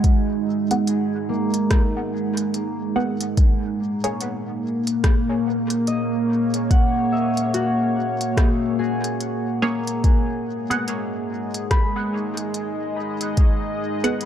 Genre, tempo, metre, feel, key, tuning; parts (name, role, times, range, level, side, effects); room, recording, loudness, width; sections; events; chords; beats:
ambient dub; 72 BPM; 4/4; swing 60% on 16ths; G# minor; A4 = 439 Hz
deep dark ambient pad; sustained chords; 0.0-14.3 s; G#3 to D#5; -23 LUFS; right 1 dB; chorus, built-in reverb
concert harp; arpeggios; 0.0-14.2 s; A#3 to B5; -29 LUFS; left 3 dB; dub echo
electronic kick drum; drums; 0.0-13.6 s; -17 LUFS; equal; overdrive
organic electronic drum kit; drums; 0.0-14.3 s; hi-hat, rim click; -29 LUFS; equal; overdrive, dub echo
filtered dub chord stab; stabs; 0.7-4.3, 9.6-14.2 s; A#3 to F#5; -29 LUFS; right 1 dB; phaser, wide subtle chorus, vintage 12-bit sampler grit, dub echo
light reverb; echo-heavy mix; -19 LUFS; side -10 dB against mid
0.0-14.3 A section
0.0 G#m7; 3.4 A#m7b5; 10.0 G#m7
| 0.04 0.87 1.71 2.54 | 3.37 4.21 5.04 5.87 | 6.71 7.54 8.37 9.21 | 10.04 10.87 11.71 12.54 | 13.37 14.21